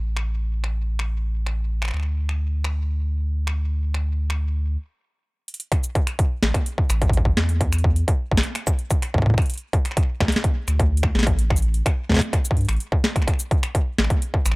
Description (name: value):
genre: IDM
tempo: 127 BPM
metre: 4/4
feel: straight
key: unclear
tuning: A4 = 441 Hz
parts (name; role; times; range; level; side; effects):
- warm sub bass; bass; 0.0-14.6 s; A1 to A2; -22 LUFS; equal; none
- booming analog drum machine; drums; 0.2-14.6 s; finger snaps, hi-hat, shaker, snare drum; -25 LUFS; equal; none
- electronic kick drum; drums; 5.7-14.4 s; none; -20 LUFS; equal; distortion
room: little or no reverb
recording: dry, gritty hardware recording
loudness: -20 LUFS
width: side -25 dB against mid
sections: 0.0-5.7 A section; 5.7-14.6 B section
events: stop 4.8-5.7; drum fill 5.5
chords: none